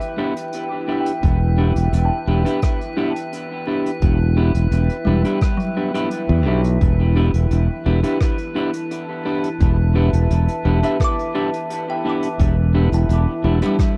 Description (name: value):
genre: ambient dub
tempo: 86 BPM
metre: 4/4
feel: straight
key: E minor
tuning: A4 = 440 Hz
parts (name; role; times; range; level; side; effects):
- deep dark ambient pad; sustained chords; 0.0-14.0 s; E4 to A5; -29 LUFS; equal; chorus, built-in reverb
- kalimba; arpeggios; 0.0-14.0 s; F#3 to D6; -31 LUFS; equal; low-pass filter, dub echo
- vintage brush drum kit; drums; 0.0-13.9 s; hi-hat, rim click; -37 LUFS; equal; dub echo
- drifting glass-harmonics texture; texture; 0.0-14.0 s; B4; -36 LUFS; equal; chorus, built-in reverb
- semi-hollow electric guitar; stabs; 0.2-13.8 s; B3 to G4; -26 LUFS; equal; subtle chorus, dub echo
- modern bright fingered electric bass; bass; 1.2-13.6 s; E1 to E2; -18 LUFS; equal; none
- electronic kick drum; drums; 1.2-13.9 s; none; -21 LUFS; equal; overdrive
room: small room ambience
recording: dark, warm production, vinyl crackle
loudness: -19 LUFS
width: mono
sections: 0.0-14.0 A section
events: filter sweep on kalimba 0.0-14.0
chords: 0.0 Em7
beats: 0.54 | 1.23 1.93 2.63 3.33 | 4.02 4.72 5.42 6.12 | 6.82 7.51 8.21 8.91 | 9.61 10.30 11.00 11.70 | 12.40 13.09 13.79